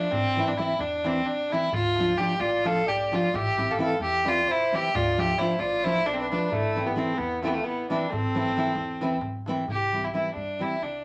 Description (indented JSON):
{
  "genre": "balkan folk, Balkan wedding band",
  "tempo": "264 BPM (eighths)",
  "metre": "7/8",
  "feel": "straight",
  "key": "A minor",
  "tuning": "A4 = 440 Hz",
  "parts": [
    { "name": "clear fiddle", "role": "melody", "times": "0.0-11.0 s", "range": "A3 to A4", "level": "-28 LUFS", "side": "equal", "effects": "none" },
    { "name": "nylon-string guitar", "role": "accompaniment", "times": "0.0-10.8 s", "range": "E3 to F4", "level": "-32 LUFS", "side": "equal", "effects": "none" },
    { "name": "upright bass", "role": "bass", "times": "0.1-11.0 s", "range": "A1 to G2", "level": "-42 LUFS", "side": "equal", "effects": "none" },
    { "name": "darbuka", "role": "percussion", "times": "0.1-10.9 s", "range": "none", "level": "-37 LUFS", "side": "equal", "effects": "none" },
    { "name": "dark trumpet", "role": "second line", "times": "2.4-9.2 s", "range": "E4 to F5", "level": "-34 LUFS", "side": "equal", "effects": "none" }
  ],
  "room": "wet studio reverb, RT60 0.6 s",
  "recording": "none",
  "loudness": "-26 LUFS",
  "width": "mono",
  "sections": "0.0-9.7 A section; 9.7-11.0 B section",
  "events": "none",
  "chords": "0.1 Am; 1.7 Dm; 3.3 Am; 4.9 Dm; 6.5 Am; 9.7 C"
}